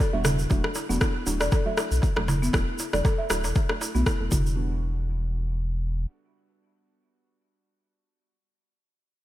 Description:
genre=afro house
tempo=118 BPM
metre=4/4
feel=swing 55% on 16ths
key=E minor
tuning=A4 = 440 Hz
part: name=buzzing marimba with soft mallets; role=arpeggios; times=0.0-4.8 s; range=B3 to E5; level=-31 LUFS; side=left 1 dB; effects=sidechain pumping, low-pass filter, ping-pong delay
part: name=deep mellow chord stab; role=stabs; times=0.0-8.4 s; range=F#3 to A4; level=-34 LUFS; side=right 2 dB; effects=lush chorus, sidechain pumping, ping-pong delay
part: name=electronic kick drum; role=drums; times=0.0-4.4 s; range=none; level=-24 LUFS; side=equal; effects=overdrive, small room ambience
part: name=tube shaker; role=percussion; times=0.0-4.5 s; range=none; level=-36 LUFS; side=right 2 dB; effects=none
part: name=warm sub bass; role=bass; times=0.1-6.1 s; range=D1 to B1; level=-27 LUFS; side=equal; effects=sidechain pumping
part: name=electronic rim click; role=drums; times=0.2-4.2 s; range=none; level=-30 LUFS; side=left 1 dB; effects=overdrive, small room ambience
part: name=darbuka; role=percussion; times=0.2-4.4 s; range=none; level=-32 LUFS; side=right 2 dB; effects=none
room=light reverb, small room ambience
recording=bright 1980s-style digital production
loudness=-23 LUFS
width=side -14 dB against mid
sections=0.0-4.6 A section; 4.6-8.6 B section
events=filter sweep on synth stab 0.0-4.6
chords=0.0 Em9; 0.5 D; 4.3 Em9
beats=| 0.50 1.01 1.52 2.03 | 2.53 3.04 3.55 4.06 | 4.57 5.08 5.58 6.09 | 6.60 7.11 7.62 8.13

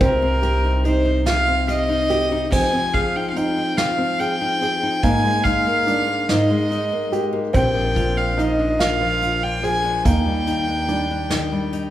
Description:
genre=acoustic folk duo or small band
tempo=48 BPM (dotted quarters)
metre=6/8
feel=straight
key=unclear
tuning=A4 = 440 Hz
part: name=warm fiddle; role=melody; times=0.0-11.9 s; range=Bb4 to Ab5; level=-22 LUFS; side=equal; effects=none
part: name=nylon-string guitar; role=accompaniment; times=0.0-11.9 s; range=Ab2 to Ab4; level=-24 LUFS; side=left 2 dB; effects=none
part: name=warm upright piano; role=arpeggios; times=0.0-11.3 s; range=Bb3 to Ab4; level=-24 LUFS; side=right 2 dB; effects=none
part: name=upright bass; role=bass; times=0.0-2.5, 7.5-11.9 s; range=Bb1 to Eb2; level=-24 LUFS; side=right 1 dB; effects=none
part: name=soft brush drum kit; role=drums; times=0.0-11.9 s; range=crash cymbal, hi-hat, kick drum, snare drum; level=-24 LUFS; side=right 1 dB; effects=none
room=wet recital hall reverb, RT60 1.8 s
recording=recorded in a church or concert hall, faint mains hum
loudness=-17 LUFS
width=side -13 dB against mid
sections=0.0-2.5 A section; 2.5-11.9 B section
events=fiddle solo 0.0-2.5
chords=0.0 Cm; 2.5 Fm7; 5.0 Absus2; 7.5 Bbadd9; 10.1 Ebmaj7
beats=| 0.01 1.26 | 2.52 3.77 | 5.03 6.29 | 7.54 8.80 | 10.05 11.30

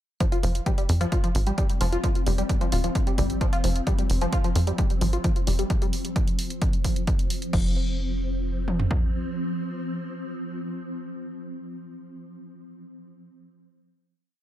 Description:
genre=driving peak-time techno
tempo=131 BPM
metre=4/4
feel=straight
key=unclear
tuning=A4 = 440 Hz
part: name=tight sequenced synth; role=riff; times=0.2-7.7 s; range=F3 to F4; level=-30 LUFS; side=left 1 dB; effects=chorus, overdrive, sidechain pumping, analog delay
part: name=swarming drone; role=drone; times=1.7-11.8 s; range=F3 to C4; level=-33 LUFS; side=left 1 dB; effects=built-in reverb, sidechain pumping
part: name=punchy analog drum machine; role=drums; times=0.2-9.0 s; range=kick drum, toms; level=-24 LUFS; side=equal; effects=none
part: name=punchy analog drum machine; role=drums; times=0.2-7.6 s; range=crash cymbal, hi-hat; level=-35 LUFS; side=right 2 dB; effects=none
part: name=tight sequencer bass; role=bass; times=0.4-8.9 s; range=Eb1 to F2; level=-25 LUFS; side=equal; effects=sidechain pumping
room=light reverb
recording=echo-heavy mix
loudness=-23 LUFS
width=side -13 dB against mid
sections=0.2-7.5 groove; 7.5-11.2 final chord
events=none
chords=0.2 F5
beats=| 0.20 0.66 1.12 1.58 | 2.04 2.50 2.95 3.41 | 3.87 4.33 4.79 5.24 | 5.70 6.16 6.62 7.08 | 7.53 7.99 8.45 8.91 | 9.37 9.82 10.28 10.74

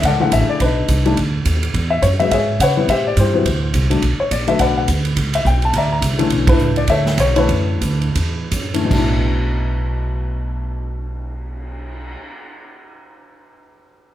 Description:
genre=jazz piano trio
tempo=148-211 BPM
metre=4/4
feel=swing 59% on 8ths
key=B minor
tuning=A4 = 442 Hz
part: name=warm baby grand piano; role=melody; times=0.0-12.2 s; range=B2 to Bb5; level=-18 LUFS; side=left 3 dB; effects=none
part: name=upright bass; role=bass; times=0.0-12.1 s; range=A1 to C#3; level=-19 LUFS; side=right 1 dB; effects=none
part: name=swinging big-band drum kit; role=drums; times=0.0-12.1 s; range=crash cymbal, cymbal swell, hi-hat, kick drum, ride cymbal, snare drum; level=-22 LUFS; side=right 2 dB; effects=none
room=light reverb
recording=band playing live in one room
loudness=-15 LUFS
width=side -12 dB against mid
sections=0.0-8.9 A section; 8.9-12.2 B section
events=slowing down 6.3-8.9; band accent 6.4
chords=0.0 Bm11 (rootless); 0.6 B(#9); 1.7 E6; 2.9 Am7; 3.5 D7sus2; 4.0 Bm7; 5.2 A9 (rootless); 5.7 C13; 6.3 Bm11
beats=0.03 0.32 | 0.60 0.89 1.17 1.46 | 1.74 2.03 2.31 2.60 | 2.88 3.17 3.46 3.74 | 4.03 4.31 4.59 4.88 | 5.16 5.45 5.73 6.02 | 6.30 6.59 6.88 7.18 | 7.49 7.81 8.15 8.52 | 8.91 9.31 9.72 10.13 | 10.53 10.94 11.35 11.75

